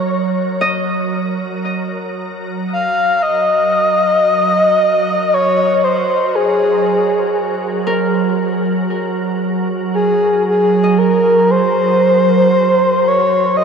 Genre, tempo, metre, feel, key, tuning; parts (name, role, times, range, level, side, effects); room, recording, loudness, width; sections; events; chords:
ambient; 58 BPM; 4/4; straight; A4 = 439 Hz
breathy flute-like synth lead; melody; 0.0-13.6 s; Ab4 to F5; -14 LUFS; left 1 dB; chorus, shimmer reverb, tape echo
organ-like drone; drone; 0.0-13.6 s; Gb3 to Bb4; -19 LUFS; right 4 dB; ensemble chorus, built-in reverb
Celtic harp; arpeggios; 0.6-12.6 s; Bb4 to Eb5; -24 LUFS; left 2 dB; shimmer reverb, tape echo
wet huge ambient reverb, RT60 7.8 s; cassette tape; -12 LUFS; side -6 dB against mid
0.0-13.6 A section
fade-in on synth drone 0.0-13.6; fade-out on harp 0.0-13.6
0.0 Gb